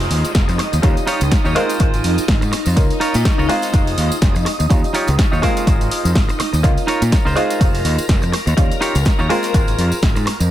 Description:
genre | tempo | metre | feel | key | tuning
filtered disco house | 124 BPM | 4/4 | swing 57% on 16ths | unclear | A4 = 440 Hz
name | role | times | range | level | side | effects
muted clav | accompaniment | 0.0-10.5 s | G3 to F4 | -24 LUFS | equal | phaser, vintage 12-bit sampler grit, sidechain pumping, dub echo
phased string machine | sustained chords | 0.0-10.5 s | Eb4 to Bb5 | -25 LUFS | left 1 dB | ensemble chorus, phaser, sidechain pumping
semi-hollow electric guitar | riff | 0.0-10.4 s | Eb4 to Db5 | -23 LUFS | right 1 dB | vintage 12-bit sampler grit, sidechain pumping, dub echo
growling fingered electric bass | bass | 0.0-10.5 s | F1 to Bb2 | -19 LUFS | equal | overdrive, sidechain pumping
punchy analog drum machine | drums | 0.0-10.5 s | hi-hat, snare drum, woodblock | -24 LUFS | right 1 dB | sidechain pumping on hats, sidechain pumping on perc, sidechain pumping on cymbals, dub echo
tambourine | percussion | 0.0-10.5 s | none | -33 LUFS | equal | sidechain pumping on perc, dub echo
downlifter | sound effects | 0.0-2.8 s | none | -33 LUFS | left 1 dB | none
electronic kick drum | drums | 0.3-10.1 s | none | -16 LUFS | equal | overdrive
room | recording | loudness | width
digital ambience | echo-heavy mix | -14 LUFS | side -12 dB against mid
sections
0.0-10.5 A section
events
none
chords
0.0 Fm7; 0.8 Eb9; 1.6 Ab69; 2.8 Db69; 3.5 Fm7; 4.7 Eb9; 5.4 Ab69; 6.6 Db69; 7.4 Fm7; 8.6 Eb9; 9.3 Ab69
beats
0.35 | 0.83 1.32 1.80 2.28 | 2.77 3.25 3.74 4.22 | 4.70 5.19 5.67 6.16 | 6.64 7.12 7.61 8.09 | 8.57 9.06 9.54 10.03

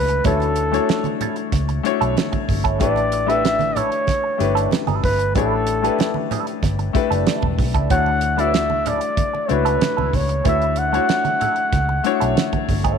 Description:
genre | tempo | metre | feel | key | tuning
lush 1970s-style soul | 94 BPM | 4/4 | straight | D major | A4 = 440 Hz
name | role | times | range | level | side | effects
warm flugelhorn | melody | 0.0-12.7 s | A4 to F#5 | -21 LUFS | equal | none
clear grand piano | accompaniment | 0.0-13.0 s | A3 to D5 | -23 LUFS | left 12 dB | none
vintage muted fingered electric bass | bass | 0.0-12.9 s | E1 to D2 | -23 LUFS | equal | none
direct-recorded clean electric guitar | riff | 0.1-13.0 s | F#3 to B4 | -26 LUFS | right 13 dB | wah
damped 70s drum kit | drums | 0.1-13.0 s | hi-hat, kick drum, snare drum | -23 LUFS | right 3 dB | none
congas | percussion | 0.2-12.8 s | none | -30 LUFS | right 9 dB | none
room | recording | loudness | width
light reverb, studio reverb | 1960s-style stereo with parts hard left and right | -17 LUFS | side -7 dB against mid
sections
0.0-13.0 A section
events
none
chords
0.0 Dmaj9; 2.8 A7sus4; 7.9 Dmaj9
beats
| 0.25 0.89 1.53 2.17 | 2.80 3.44 4.08 4.72 | 5.35 5.99 6.63 7.27 | 7.91 8.54 9.18 9.82 | 10.46 11.09 11.73 12.37

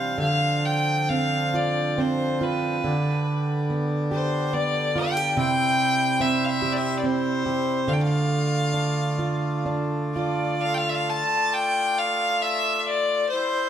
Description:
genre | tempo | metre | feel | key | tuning
celtic folk, Celtic slow air | 61-74 BPM | 3/4 | rubato | D dorian | A4 = 441 Hz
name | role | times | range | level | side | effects
clear fiddle | melody | 0.0-13.7 s | B4 to A5 | -24 LUFS | left 2 dB | none
fingerpicked plugged-in steel-string acoustic guitar | accompaniment | 0.0-11.2 s | C3 to G4 | -24 LUFS | right 3 dB | none
accordion | sustained chords | 0.0-13.7 s | D3 to D5 | -31 LUFS | left 1 dB | none
room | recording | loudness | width
wet stone room reverb, RT60 1.3 s | band playing live in one room | -21 LUFS | side -9 dB against mid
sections
0.2-10.6 A section; 10.6-13.7 B section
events
none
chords
0.2 Dm7; 2.8 G/D; 5.4 C; 7.9 Dm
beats
| 0.19 1.09 1.98 | 2.84 3.69 4.53 | 5.37 6.20 7.03 | 7.87 8.73 9.66 | 10.62 11.55 12.44 | 13.30

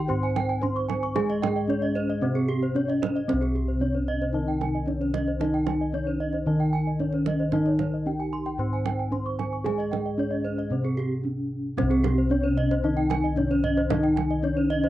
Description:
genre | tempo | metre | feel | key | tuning
Balinese gamelan | 113 BPM | 4/4 | straight | C pelog | A4 = 438 Hz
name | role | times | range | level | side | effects
gamelan-type bronze metallophone | melody | 0.0-14.9 s | C4 to C5 | -28 LUFS | equal | none
gamelan-type bronze metallophone | accompaniment | 0.0-14.9 s | C3 to C4 | -32 LUFS | left 2 dB | none
gamelan-type bronze metallophone | arpeggios | 0.0-14.9 s | C5 to Db6+35c | -34 LUFS | left 5 dB | none
gamelan-type bossed gongs | bass | 0.0-14.9 s | C2 to Ab4 | -27 LUFS | equal | none
gamelan-type bronze metallophone | arpeggios | 0.2-14.8 s | G4 to Db6+35c | -32 LUFS | right 5 dB | none
kendang | percussion | 0.4-14.9 s | none | -34 LUFS | right 8 dB | none
room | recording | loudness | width
little or no reverb | dry, close 1970s-style studio recording | -23 LUFS | side -14 dB against mid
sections
0.0-11.8 A section; 11.8-14.9 A section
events
break 11.0-11.8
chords
none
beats
0.09 0.62 | 1.16 1.69 2.22 2.75 | 3.28 3.81 4.34 4.87 | 5.40 5.93 6.47 7.00 | 7.53 8.06 8.59 9.12 | 9.65 10.18 10.71 11.24 | 11.78 12.31 12.84 13.37 | 13.90 14.43

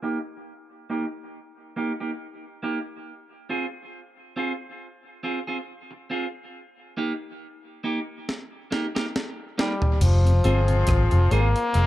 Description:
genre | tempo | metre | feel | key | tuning
dub reggae | 69 BPM | 4/4 | swing 55% on 16ths | F minor | A4 = 445 Hz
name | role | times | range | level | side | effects
clean electric guitar | accompaniment | 0.0-11.5 s | Bb3 to Ab4 | -30 LUFS | right 2 dB | low-pass filter, dub echo
breakbeat sampler-style drum kit | drums | 8.3-11.9 s | crash cymbal, hi-hat, kick drum, rim click, snare drum, toms | -26 LUFS | equal | none
brilliant trombone | melody | 9.6-11.9 s | F3 to Bb3 | -25 LUFS | left 2 dB | dub echo
vintage muted fingered electric bass | bass | 10.0-11.9 s | F1 to Ab1 | -18 LUFS | equal | none
mellow tonewheel organ | accompaniment | 10.2-11.4 s | F2 to F4 | -31 LUFS | left 2 dB | chorus vibrato, slow rotary speaker
warm horn section | second line | 10.4-11.9 s | Ab3 to Ab4 | -31 LUFS | left 3 dB | dub echo
room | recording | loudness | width
light reverb | dark, warm production | -23 LUFS | side -15 dB against mid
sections
0.0-10.0 A section; 10.0-11.9 B section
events
filter sweep on clean electric guitar 0.0-10.0; drum fill 8.3-10.0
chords
0.0 Eb; 3.1 Fm; 6.5 Eb; 10.0 Fm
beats
0.47 1.33 2.20 | 3.07 3.94 4.81 5.67 | 6.54 7.41 8.28 9.14 | 10.01 10.88 11.74

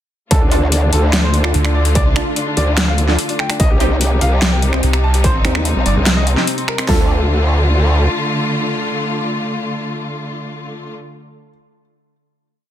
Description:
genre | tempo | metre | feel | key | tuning
heavy wobble dubstep | 146 BPM | 4/4 | half-time | D phrygian | A4 = 440 Hz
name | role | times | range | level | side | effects
bright concert grand piano | melody | 0.3-11.5 s | C4 to A5 | -24 LUFS | left 1 dB | ping-pong delay
rich symphonic string section | sustained chords | 0.3-10.9 s | C3 to F4 | -22 LUFS | left 1 dB | sidechain pumping, low-pass filter
growl bass | bass | 0.3-8.1 s | Bb1 to Eb2 | -15 LUFS | equal | chorus, overdrive
dubstep drum kit | drums | 0.3-7.0 s | hi-hat, kick drum, snare drum | -15 LUFS | equal | distortion
dubstep drum kit | drums | 0.3-6.9 s | finger snaps, hi-hat, snare drum | -19 LUFS | equal | soft clipping on snare
orchestra-hit-like synth stab | stabs | 0.5-11.5 s | C4 to A4 | -24 LUFS | right 1 dB | built-in reverb, ping-pong delay
snarling distorted saw bass | bass | 1.5-2.1, 4.8-5.9 s | G1 to D2 | -15 LUFS | equal | distortion, overdrive
room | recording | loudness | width
little or no reverb | dense, heavily limited modern master | -13 LUFS | side -11 dB against mid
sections
0.3-6.9 drop; 6.9-10.2 final chord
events
drop 0.3-6.9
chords
0.3 Dm; 3.6 Cm; 6.9 Dm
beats
| 0.31 0.72 1.13 1.54 | 1.95 2.37 2.78 3.19 | 3.60 4.01 4.42 4.83 | 5.24 5.65 6.06 6.47 | 6.89 7.30 7.71 8.12 | 8.53 8.94 9.35 9.76

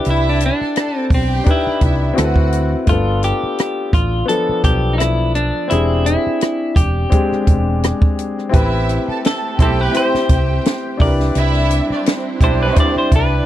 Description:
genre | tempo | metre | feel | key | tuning
lush 1970s-style soul | 85 BPM | 4/4 | swing 54% on 16ths | C major | A4 = 440 Hz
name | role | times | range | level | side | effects
clean electric guitar | melody | 0.0-13.5 s | C4 to D5 | -21 LUFS | equal | wide subtle chorus
warm concert grand piano | accompaniment | 0.0-13.5 s | F3 to D5 | -20 LUFS | left 3 dB | none
compact cocktail drum kit | drums | 0.0-13.3 s | hi-hat, kick drum, rim click, snare drum | -15 LUFS | equal | none
rich studio violin section | second line | 0.1-2.7, 8.5-13.4 s | C4 to A5 | -24 LUFS | right 3 dB | none
hollow-body short-scale fingered electric bass | bass | 0.1-13.4 s | E1 to D2 | -18 LUFS | right 1 dB | none
warm symphonic string section | sustained chords | 8.5-13.5 s | G3 to G4 | -26 LUFS | right 2 dB | none
warm horn section | stabs | 9.6-12.9 s | C4 to G4 | -22 LUFS | right 6 dB | none
room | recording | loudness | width
small room ambience | dry, close 1970s-style studio recording | -14 LUFS | side -12 dB against mid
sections
0.0-13.5 A section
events
clean electric guitar solo 0.0-13.5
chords
0.0 Cmaj9; 2.2 D13; 2.9 G7; 5.7 E7alt; 8.5 Am9; 11.0 Cmaj9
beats
| 0.05 0.76 1.46 2.17 | 2.88 3.59 4.29 5.00 | 5.71 6.41 7.12 7.83 | 8.53 9.24 9.95 10.65 | 11.36 12.07 12.77

